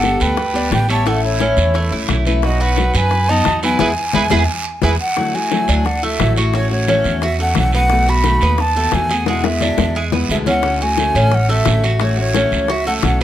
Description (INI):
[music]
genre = latin, Cuban son and guajira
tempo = 175 BPM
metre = 4/4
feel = straight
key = A major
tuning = A4 = 440 Hz
[part]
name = breathy jazz flute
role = melody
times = 0.0-13.2 s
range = C#5 to B5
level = -20 LUFS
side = right 1 dB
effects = none
[part]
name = growling trumpet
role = second line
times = 0.0-4.9 s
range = E4 to D#5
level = -24 LUFS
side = right 4 dB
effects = none
[part]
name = picked steel-string acoustic guitar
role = accompaniment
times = 0.0-13.2 s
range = B2 to G4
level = -22 LUFS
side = left 4 dB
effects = none
[part]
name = Cuban tres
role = arpeggios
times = 0.0-13.2 s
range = G#3 to B4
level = -22 LUFS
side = right 2 dB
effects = none
[part]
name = upright bass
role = bass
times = 0.0-13.2 s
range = G1 to F#2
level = -18 LUFS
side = right 1 dB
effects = none
[part]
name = bongos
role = percussion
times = 0.0-13.2 s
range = none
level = -23 LUFS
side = left 8 dB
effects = none
[part]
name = guiro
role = percussion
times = 0.0-13.2 s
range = none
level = -26 LUFS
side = right 6 dB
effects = none
[sound]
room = little or no reverb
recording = close, detailed microphones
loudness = -14 LUFS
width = side -12 dB against mid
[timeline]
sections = 0.0-5.2 A section; 5.2-13.2 B section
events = band accent 3.8-5.2; drum fill 4.3-5.2, 9.3-10.6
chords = 0.0 Gadd9; 1.1 A; 2.4 B; 3.8 E; 5.2 Dadd9; 6.5 A6; 7.9 B7; 9.3 E7; 10.6 Dmaj7; 12.0 A6